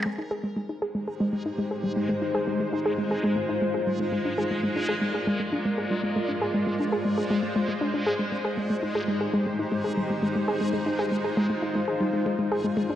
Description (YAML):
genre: IDM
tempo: 118 BPM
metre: 4/4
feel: straight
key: Ab lydian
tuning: A4 = 440 Hz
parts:
  - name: soft round pluck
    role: arpeggios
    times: 0.0-13.0 s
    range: G3 to Ab4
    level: -27 LUFS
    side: equal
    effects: chorus, digital delay
  - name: electronic percussion blips and hi-hat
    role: drums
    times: 0.0-12.9 s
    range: none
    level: -34 LUFS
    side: right 1 dB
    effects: low-pass filter on hats, low-pass filter on perc, low-pass filter on snare, digital delay
  - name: backwards swelling texture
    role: texture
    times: 0.0-13.0 s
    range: Ab3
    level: -36 LUFS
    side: equal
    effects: built-in reverb
  - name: granular cloud pad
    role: sustained chords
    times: 1.0-13.0 s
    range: Ab3 to D5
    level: -28 LUFS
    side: equal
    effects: built-in reverb
room: wet echo chamber reverb, RT60 1.6 s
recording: worn, warbling old tape, cassette tape, warbly pitch drift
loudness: -24 LUFS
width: side -11 dB against mid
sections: 0.1-13.0 A section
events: none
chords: 0.1 Abmaj7; 4.1 Bb; 8.2 Abmaj7; 12.3 Bb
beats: | 0.06 0.57 1.07 1.58 | 2.09 2.60 3.11 3.62 | 4.12 4.63 5.14 5.65 | 6.16 6.67 7.18 7.68 | 8.19 8.70 9.21 9.72 | 10.23 10.73 11.24 11.75 | 12.26 12.77